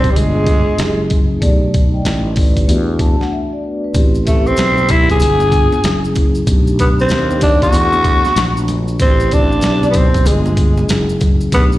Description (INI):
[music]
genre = hip hop, jazz-hop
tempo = 95 BPM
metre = 4/4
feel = swing 64% on 16ths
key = A dorian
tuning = A4 = 440 Hz
[part]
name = growling tenor saxophone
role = melody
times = 0.0-11.7 s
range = G3 to G#4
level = -16 LUFS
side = equal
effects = plate reverb, slapback echo
[part]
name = vibraphone with soft mallets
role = accompaniment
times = 0.0-11.8 s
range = A3 to A5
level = -21 LUFS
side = left 1 dB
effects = plate reverb, slapback echo
[part]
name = sustaining fretless electric bass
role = bass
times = 0.0-11.8 s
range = F#1 to E2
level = -16 LUFS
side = equal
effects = none
[part]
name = boom bap sampler-style drum kit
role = drums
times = 0.0-11.7 s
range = hi-hat, kick drum, snare drum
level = -15 LUFS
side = equal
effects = none
[part]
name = maracas and congas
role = percussion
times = 3.9-11.8 s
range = none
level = -28 LUFS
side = right 3 dB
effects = slapback echo
[sound]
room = light reverb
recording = live gig heard through the venue's PA, recital hall reverb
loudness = -11 LUFS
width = side -16 dB against mid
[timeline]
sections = 0.0-11.8 A section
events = vibraphone fill 2.7-3.9; break 3.3-3.9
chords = 0.2 G7b9; 0.8 F#7; 1.4 B7alt; 2.7 E9sus4; 3.9 Am9; 5.2 G7b9; 5.8 F#7; 6.5 B7alt; 7.7 E9sus4; 9.0 Am9; 10.3 G7b9; 10.9 F#7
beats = 0.16 0.79 | 1.42 2.05 2.68 3.31 | 3.94 4.58 5.21 5.84 | 6.47 7.10 7.74 8.37 | 9.00 9.63 10.26 10.89 | 11.52